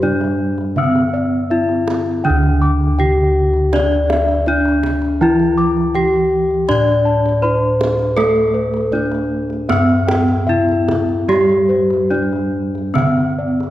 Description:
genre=Javanese gamelan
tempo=80 BPM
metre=4/4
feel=uneven beats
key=D slendro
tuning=A4 = 437 Hz
part: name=gamelan-type bronze metallophone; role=melody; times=0.0-13.7 s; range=C4-40c to D5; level=-17 LUFS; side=left 2 dB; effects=slapback echo
part: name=gamelan-type bronze metallophone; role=accompaniment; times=0.0-13.7 s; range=D3 to D4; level=-21 LUFS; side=right 3 dB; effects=none
part: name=gamelan-type bossed gongs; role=arpeggios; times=0.0-13.7 s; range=C5-40c to D6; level=-23 LUFS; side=left 2 dB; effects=none
part: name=gamelan-type bossed gongs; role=bass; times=0.0-13.7 s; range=D2 to A4+20c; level=-20 LUFS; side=equal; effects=none
part: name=kendang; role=percussion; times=0.0-13.7 s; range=none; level=-26 LUFS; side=right 2 dB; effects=none
room=moderate concert hall reverb, RT60 2.0 s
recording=worn, warbling old tape, cassette tape, warbly pitch drift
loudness=-13 LUFS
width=side -14 dB against mid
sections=0.0-13.7 A section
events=none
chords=none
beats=0.03 0.77 1.51 | 2.25 2.99 3.73 4.47 | 5.21 5.95 6.69 7.43 | 8.18 8.92 9.69 10.47 | 11.28 12.10 12.95

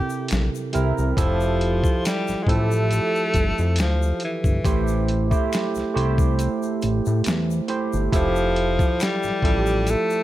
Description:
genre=R&B, neo-soul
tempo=69 BPM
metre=4/4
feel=swing 54% on 16ths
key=F major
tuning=A4 = 440 Hz
part: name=clear tenor saxophone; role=melody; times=0.0-10.2 s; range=E3 to G4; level=-25 LUFS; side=left 1 dB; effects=none
part: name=barky tine electric piano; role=accompaniment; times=0.0-10.2 s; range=C3 to C5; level=-25 LUFS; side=right 4 dB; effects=overdrive, analog chorus
part: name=tube shaker and finger snaps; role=percussion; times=0.1-10.2 s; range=none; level=-38 LUFS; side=left 6 dB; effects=none
part: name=fat analog bass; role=bass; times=0.3-10.0 s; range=F1 to A2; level=-22 LUFS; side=left 1 dB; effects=none
part: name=boom bap sampler-style drum kit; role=drums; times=0.3-10.1 s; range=hi-hat, kick drum, snare drum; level=-24 LUFS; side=left 1 dB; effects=none
room=studio reverb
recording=none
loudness=-19 LUFS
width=side -14 dB against mid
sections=0.0-1.2 A section; 1.2-10.2 B section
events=none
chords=0.0 C7; 1.2 Fmaj9; 4.6 Am7; 8.1 Fmaj9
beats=0.30 | 1.17 2.04 2.91 3.78 | 4.65 5.52 6.38 7.25 | 8.12 8.99 9.86

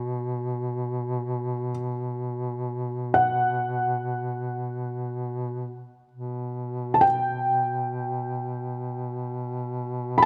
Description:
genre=caucasian folk, Caucasian lament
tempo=free time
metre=none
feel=none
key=unclear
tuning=A4 = 439 Hz
part: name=felt-muted upright piano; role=melody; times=0.0-10.3 s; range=F#5 to B5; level=-24 LUFS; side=equal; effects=none
part: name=mellow duduk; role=drone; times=0.0-10.3 s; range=B2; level=-32 LUFS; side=equal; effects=none
room=light reverb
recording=close, detailed microphones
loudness=-28 LUFS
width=mono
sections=0.0-10.3 A section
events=none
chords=none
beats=free time

